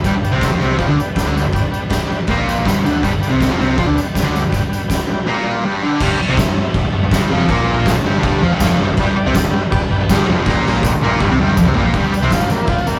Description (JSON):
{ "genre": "garage rock duo or trio", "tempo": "162 BPM", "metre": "4/4", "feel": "straight", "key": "G major", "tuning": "A4 = 439 Hz", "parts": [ { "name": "combo organ", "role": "sustained chords", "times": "0.0-6.0, 9.0-13.0 s", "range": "D4 to B5", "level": "-28 LUFS", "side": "equal", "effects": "none" }, { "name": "fuzz guitar", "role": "riff", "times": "0.0-13.0 s", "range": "F2 to F4", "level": "-19 LUFS", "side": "equal", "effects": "distortion" }, { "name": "fuzz fingered electric bass", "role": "bass", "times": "0.0-13.0 s", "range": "F1 to F2", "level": "-25 LUFS", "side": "equal", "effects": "overdrive" }, { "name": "oversized low-tuned drum kit", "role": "drums", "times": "0.0-12.8 s", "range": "crash cymbal, kick drum, snare drum, toms", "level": "-20 LUFS", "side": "equal", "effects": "none" }, { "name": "tambourine", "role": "percussion", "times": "0.0-13.0 s", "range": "none", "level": "-36 LUFS", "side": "equal", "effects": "none" }, { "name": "overdriven combo organ", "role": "melody", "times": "12.3-13.0 s", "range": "Bb3 to F4", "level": "-22 LUFS", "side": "equal", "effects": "none" } ], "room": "moderate studio reverb, RT60 0.6 s", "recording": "rough rehearsal-room recording", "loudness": "-16 LUFS", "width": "mono", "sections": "0.0-6.0 A section; 6.0-11.9 B section; 11.9-13.0 C section", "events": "transistor combo organ fill 2.5-3.0; drum fill 10.5-11.9; transistor combo organ solo 11.9-13.0", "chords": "0.0 G" }